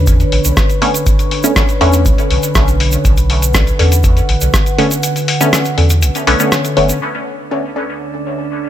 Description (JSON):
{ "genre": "dub techno", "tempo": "121 BPM", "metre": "4/4", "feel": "straight", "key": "B minor", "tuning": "A4 = 440 Hz", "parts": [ { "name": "dark analog pad", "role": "sustained chords", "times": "0.0-8.7 s", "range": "D3 to F#5", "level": "-20 LUFS", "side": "equal", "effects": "chorus, sidechain pumping" }, { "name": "filtered dub chord stab", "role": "stabs", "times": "0.0-6.9 s", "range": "D3 to C#4", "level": "-17 LUFS", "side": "left 1 dB", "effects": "chorus, phaser, sidechain pumping, dub echo" }, { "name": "soft dub sub bass", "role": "bass", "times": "0.0-6.9 s", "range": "F#1 to E2", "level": "-13 LUFS", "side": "equal", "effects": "sidechain pumping" }, { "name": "electronic kick drum", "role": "drums", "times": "0.1-4.6 s", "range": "none", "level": "-14 LUFS", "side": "equal", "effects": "overdrive, small room reverb" }, { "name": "lo-fi sampler-style drum kit", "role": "drums", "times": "0.1-7.0 s", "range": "hi-hat, rim click", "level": "-18 LUFS", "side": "left 1 dB", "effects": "low-pass filter on hats, small room reverb, low-pass filter on snare" }, { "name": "egg shaker", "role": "percussion", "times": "0.1-7.0 s", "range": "none", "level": "-22 LUFS", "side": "right 3 dB", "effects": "none" }, { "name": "wavetable chord stab", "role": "riff", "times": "1.6-7.9 s", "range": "C#4 to D5", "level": "-25 LUFS", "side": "left 2 dB", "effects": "sidechain pumping, dub echo" }, { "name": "drifting glass-harmonics texture", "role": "texture", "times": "7.4-8.7 s", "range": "D4", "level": "-25 LUFS", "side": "right 10 dB", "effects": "chorus, built-in reverb, sidechain pumping" } ], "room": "light reverb, digital ambience", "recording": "none", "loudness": "-11 LUFS", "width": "side -11 dB against mid", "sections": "0.0-7.0 A section; 7.0-8.7 B section", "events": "kick drops out 5.0-7.0", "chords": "0.0 Bm9" }